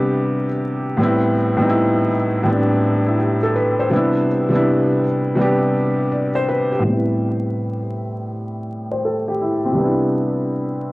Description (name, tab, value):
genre	hip hop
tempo	82 BPM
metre	4/4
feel	swing 63% on 16ths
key	unclear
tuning	A4 = 440 Hz
part	felt-muted upright piano	solo	0.0-10.9 s	A2 to D5	-16 LUFS	equal	cassette tape, low-pass filter, analog delay
room	light reverb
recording	dry, gritty hardware recording, vinyl crackle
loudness	-16 LUFS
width	side -20 dB against mid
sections	0.0-6.8 A section; 6.8-10.9 B section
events	filter sweep on felt piano 6.8-10.9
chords	0.0 Cmaj7; 1.0 Am9; 3.9 Cmaj7; 6.8 Am9; 9.8 Cmaj7